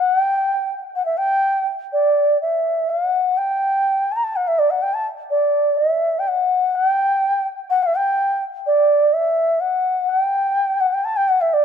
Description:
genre	indian classical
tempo	125 BPM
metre	7/4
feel	straight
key	unclear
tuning	A4 = 440 Hz
part	reedy bansuri	solo	0.0-11.6 s	D5 to Bb5	-16 LUFS	equal	none
room	moderate lush hall reverb, RT60 2.9 s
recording	rough home demo mix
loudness	-16 LUFS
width	side -7 dB against mid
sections	0.0-11.6 A section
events	none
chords	none

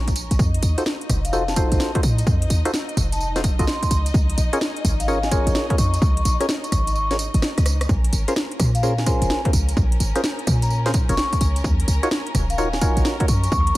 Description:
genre	UK garage, two-step garage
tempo	128 BPM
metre	4/4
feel	swing 65% on 16ths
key	Bb minor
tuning	A4 = 440 Hz
part	warm symphonic violin section	sustained chords	0.0-13.8 s	Db4 to Eb5	-34 LUFS	left 2 dB	sidechain pumping
part	short 808-style bass	bass	0.0-13.8 s	Eb1 to Bb2	-21 LUFS	equal	tube saturation
part	electronic kick drum	drums	0.1-13.6 s	none	-22 LUFS	equal	overdrive
part	house drum kit	drums	0.1-13.8 s	hi-hat, rim click, snare drum, tambourine	-27 LUFS	equal	overdrive
part	percussive organ stab	stabs	0.8-13.3 s	Db4 to Eb5	-26 LUFS	equal	chorus, cassette tape, dub echo
part	vibraphone with medium mallets	melody	1.2-13.7 s	F5 to Db6	-28 LUFS	left 1 dB	dub echo
room	digital ambience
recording	vinyl crackle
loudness	-18 LUFS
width	side -17 dB against mid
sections	0.0-13.8 A section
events	kick drops out 7.0-7.9; drum fill 7.4-7.9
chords	0.4 F7b9; 3.9 Db6; 7.9 Bbm9; 11.6 Ebm9

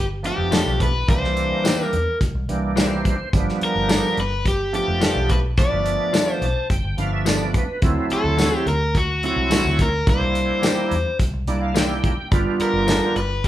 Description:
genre	straight-eighth soul blues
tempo	107 BPM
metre	4/4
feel	straight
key	G mixolydian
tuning	A4 = 439 Hz
part	overdriven electric guitar	melody	0.0-13.5 s	F#4 to D5	-23 LUFS	left 1 dB	none
part	vintage muted fingered electric bass	bass	0.0-13.5 s	F1 to E2	-25 LUFS	equal	none
part	bright tonewheel organ	accompaniment	0.2-13.2 s	E3 to A5	-24 LUFS	right 3 dB	slow rotary speaker, overdrive, chorus vibrato
part	warm soul drum kit	drums	0.2-13.5 s	hi-hat, kick drum, snare drum, tambourine	-21 LUFS	equal	none
part	direct-recorded clean electric guitar	stabs	0.5-13.1 s	E3 to A4	-28 LUFS	left 4 dB	none
room	moderate large studio reverb, RT60 0.9 s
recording	band playing live in one room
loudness	-18 LUFS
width	side -13 dB against mid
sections	0.0-13.5 A section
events	tonewheel organ fill 2.5-3.3, 6.1-7.8, 11.2-12.3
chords	0.0 G9; 1.1 C9; 3.3 G9; 7.8 D9; 10.1 C9; 12.3 G9

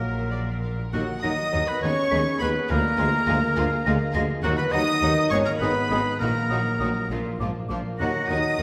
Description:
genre	cinematic, playful, whimsical film cue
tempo	68 BPM (dotted quarters)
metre	6/8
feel	straight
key	Eb minor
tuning	A4 = 439 Hz
part	clear chamber violin section	second line	0.0-8.6 s	D4 to Bb4	-39 LUFS	equal	none
part	clear oboe	second line	0.0-8.6 s	Gb4 to Eb5	-30 LUFS	equal	none
part	mellow bassoon	accompaniment	0.0-8.6 s	F3 to Ab3	-37 LUFS	equal	none
part	rich chamber viola section	accompaniment	0.0-8.6 s	Eb3 to D5	-37 LUFS	equal	none
part	warm French horn section	sustained chords	0.0-8.6 s	Gb3 to Eb4	-33 LUFS	equal	none
part	concert harp	arpeggios	0.0-8.6 s	Ab2 to Ab5	-35 LUFS	equal	none
part	rich symphonic double bass section	bass	0.0-8.6 s	Ab1 to Eb2	-34 LUFS	equal	none
part	warm studio cello section	bass	0.0-8.6 s	D2 to Bb2	-34 LUFS	equal	none
part	rich chamber violin section	melody	0.3-8.6 s	F5 to Eb6	-34 LUFS	equal	none
part	vibraphone with soft mallets	melody	0.9-8.6 s	Gb4 to Eb5	-34 LUFS	equal	none
part	mellow tuba	bass	0.9-8.6 s	Ab1 to Eb2	-35 LUFS	equal	none
part	mellow hollow concert flute	second line	1.2-8.6 s	D6 to Cb7	-35 LUFS	equal	none
room	wet recital hall reverb, RT60 1.7 s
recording	none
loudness	-24 LUFS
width	mono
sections	0.9-8.6 A section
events	none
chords	0.0 Bb; 0.9 Ebm; 1.8 Abm/Eb; 2.7 Bb7/D; 4.4 Ebm; 5.3 Abm; 6.2 Ebm/Bb; 7.1 Bb; 8.0 Ebm

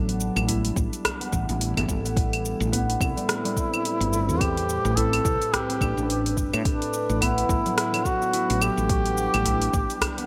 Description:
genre	organic downtempo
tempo	107 BPM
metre	4/4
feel	swing 58% on 16ths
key	A dorian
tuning	A4 = 443 Hz
part	warbly tape-like pad	sustained chords	0.0-10.3 s	A2 to B4	-36 LUFS	equal	chorus, built-in reverb, sidechain pumping
part	concert harp	arpeggios	0.0-10.3 s	E3 to E4	-32 LUFS	equal	digital delay
part	woody fretless electric bass	bass	0.0-9.8 s	G1 to A2	-29 LUFS	equal	tube saturation, subtle chorus
part	deep house drum kit	drums	0.1-10.3 s	claves, hi-hat, rim click, shaker	-31 LUFS	equal	gated reverb
part	udu	percussion	0.5-10.1 s	none	-36 LUFS	equal	none
part	electronic kick drum	drums	0.8-9.9 s	none	-29 LUFS	equal	none
part	mellow duduk	melody	3.0-10.3 s	D4 to A4	-29 LUFS	equal	digital delay
room	light reverb, small room ambience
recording	bright 1980s-style digital production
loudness	-24 LUFS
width	mono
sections	0.0-10.3 A section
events	none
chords	0.0 Em7/A; 2.2 Am9; 6.7 Bm7/A; 8.9 Em7/A

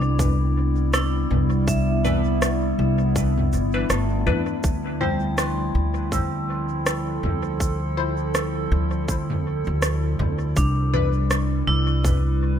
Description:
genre	ambient dub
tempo	81 BPM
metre	4/4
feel	swing 58% on 16ths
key	D dorian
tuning	A4 = 443 Hz
part	warbly tape-like pad	sustained chords	0.0-12.6 s	F3 to D5	-28 LUFS	left 2 dB	chorus, built-in reverb
part	vibraphone with hard mallets	arpeggios	0.0-12.6 s	G3 to E6	-29 LUFS	right 2 dB	dub echo
part	upright bass	bass	0.0-12.6 s	G1 to E2	-22 LUFS	equal	none
part	electronic kick drum	drums	0.2-12.2 s	none	-25 LUFS	equal	overdrive
part	organic electronic drum kit	drums	0.2-12.2 s	cabasa, rim click, toms	-28 LUFS	right 1 dB	overdrive, dub echo
part	filtered dub chord stab	stabs	2.0-11.1 s	E3 to C5	-31 LUFS	left 5 dB	phaser, lush chorus, dub echo
room	light reverb, digital ambience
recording	none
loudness	-20 LUFS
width	side -9 dB against mid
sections	0.0-12.6 A section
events	none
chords	0.0 Cmaj9; 4.6 Dm9; 10.6 Cmaj9

